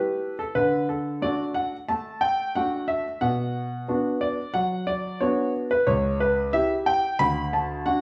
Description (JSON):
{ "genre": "classical-period piano sonatina", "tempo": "90 BPM", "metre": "4/4", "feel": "rubato", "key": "D major", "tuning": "A4 = 438 Hz", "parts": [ { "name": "clear concert grand piano", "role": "solo", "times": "0.0-8.0 s", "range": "C#2 to B5", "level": "-25 LUFS", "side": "equal", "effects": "none" } ], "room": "wet stone room reverb, RT60 1.0 s", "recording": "small room ambience", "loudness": "-25 LUFS", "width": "mono", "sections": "0.0-8.0 A section", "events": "none", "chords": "0.0 A7(no3); 0.6 D; 3.2 Bm; 5.9 C#m7b5; 7.2 D" }